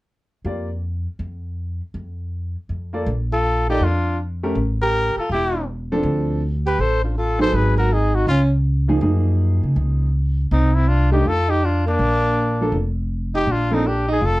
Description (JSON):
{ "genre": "jazz", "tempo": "161 BPM", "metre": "4/4", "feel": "swing 64% on 8ths", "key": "Bb major", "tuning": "A4 = 439 Hz", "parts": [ { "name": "upright bass", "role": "bass", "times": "0.4-14.4 s", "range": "E1 to Db3", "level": "-20 LUFS", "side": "equal", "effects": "none" }, { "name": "clear concert grand piano", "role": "accompaniment", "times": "0.5-0.7, 2.9-13.8 s", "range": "Eb3 to D5", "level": "-23 LUFS", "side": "right 1 dB", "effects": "none" }, { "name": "bright trumpet", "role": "melody", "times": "3.3-14.4 s", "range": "D4 to C5", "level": "-22 LUFS", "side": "left 2 dB", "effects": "none" }, { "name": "clear alto saxophone", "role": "second line", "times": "3.3-14.4 s", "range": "Bb3 to A4", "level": "-24 LUFS", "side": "right 2 dB", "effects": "none" } ], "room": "moderate studio ambience, RT60 0.5 s", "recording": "dark, warm production", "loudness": "-18 LUFS", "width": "side -19 dB against mid", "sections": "0.1-3.1 A section; 3.1-14.4 B section", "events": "none", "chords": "0.1 Bb6; 0.8 N.C.; 2.3 Fadd11; 3.1 Bbmaj7; 4.6 A5; 6.0 Dm7; 7.5 Abm7; 8.3 Db69; 9.0 Gbmaj13; 10.5 Cmadd9; 11.3 F13; 12.0 Bb" }